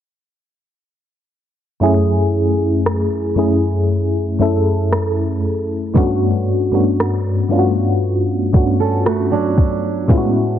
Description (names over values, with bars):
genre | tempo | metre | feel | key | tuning
contemporary R&B | 58 BPM | 4/4 | straight | unclear | A4 = 440 Hz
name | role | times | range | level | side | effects
FM electric piano with tremolo | accompaniment | 1.8-10.6 s | F#2 to A4 | -15 LUFS | left 1 dB | phaser
smooth R&B drum kit | drums | 2.9-10.3 s | kick drum, rim click | -16 LUFS | equal | none
flamenco guitar | arpeggios | 8.8-10.1 s | F#3 to A4 | -20 LUFS | right 8 dB | tape echo
room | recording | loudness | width
light reverb, digital ambience | echo-heavy mix, low-pass filter | -14 LUFS | side -10 dB against mid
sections
1.8-10.6 A section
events
filter sweep 1.8-10.6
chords
1.8 F#m9; 6.0 Gmaj9#11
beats
| 1.82 2.85 3.89 4.92 | 5.96 6.99 8.02 9.06 | 10.09